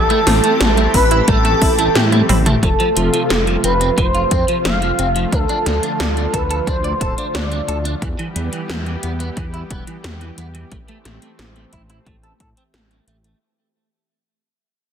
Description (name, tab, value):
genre	synthwave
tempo	89 BPM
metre	4/4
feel	straight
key	A minor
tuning	A4 = 440 Hz
part	expressive portamento lead	melody	0.0-7.9 s	A4 to F5	-19 LUFS	equal	analog chorus, digital delay
part	airy dreamy lead	second line	0.0-2.3 s	A4 to B4	-24 LUFS	equal	chorus, phaser, digital delay
part	lush unison pad	sustained chords	0.0-13.4 s	C3 to G4	-25 LUFS	left 1 dB	chorus, sidechain pumping
part	dark detuned saw bass	bass	0.0-13.3 s	D1 to A2	-20 LUFS	equal	sidechain pumping
part	wide unison pluck	arpeggios	0.1-2.6 s	G3 to G4	-24 LUFS	right 4 dB	digital delay
part	clean electric guitar	riff	0.1-13.4 s	E3 to D5	-25 LUFS	right 2 dB	ensemble chorus, low-pass filter, digital delay
part	80s electronic pad drums	drums	0.1-13.4 s	hi-hat, snare drum, toms	-21 LUFS	equal	gated reverb on snare and toms, overdrive
part	electronic kick drum	drums	0.9-12.5 s	none	-20 LUFS	equal	overdrive
room	moderate plate reverb, RT60 2.2 s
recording	dense, heavily limited modern master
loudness	-14 LUFS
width	side -8 dB against mid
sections	0.0-2.6 A section; 2.6-13.4 B section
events	drum fill 2.1-2.6; fade-out 2.6-13.4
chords	0.0 Am7; 2.6 F; 5.3 Dm; 8.0 Em; 10.7 Am7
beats	0.60 1.28 1.95 | 2.63 3.30 3.98 4.65 | 5.32 6.00 6.67 7.35 | 8.02 8.69 9.37 10.04 | 10.72 11.39 12.06 12.74